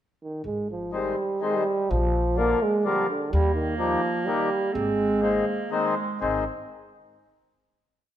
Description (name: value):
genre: alpine folk, alpine dance band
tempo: 125 BPM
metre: 3/4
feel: rubato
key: Ab major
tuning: A4 = 440 Hz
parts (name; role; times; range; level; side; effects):
- warm euphonium; melody; 0.2-5.7 s; D3 to Bb3; -25 LUFS; right 2 dB; none
- upright bass; bass; 0.4-6.5 s; Ab1 to Eb2; -28 LUFS; equal; none
- mellow accordion; accompaniment; 0.9-6.4 s; D3 to C4; -28 LUFS; left 5 dB; none
- bright clarinet; second line; 3.3-6.4 s; Ab3 to C4; -30 LUFS; right 5 dB; none
room: moderate recital hall reverb, RT60 1.6 s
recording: minimal, uncompressed stereo recording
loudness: -22 LUFS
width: side -11 dB against mid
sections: 0.0-0.4 pickup bar; 0.4-6.2 A section; 6.2-7.7 final chord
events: none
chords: 0.4 Ab; 1.9 Bb; 3.3 Eb; 4.7 Ab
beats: | 0.44 0.93 1.42 | 1.90 2.38 2.85 | 3.32 3.80 4.27 | 4.75 5.23 5.72 | 6.22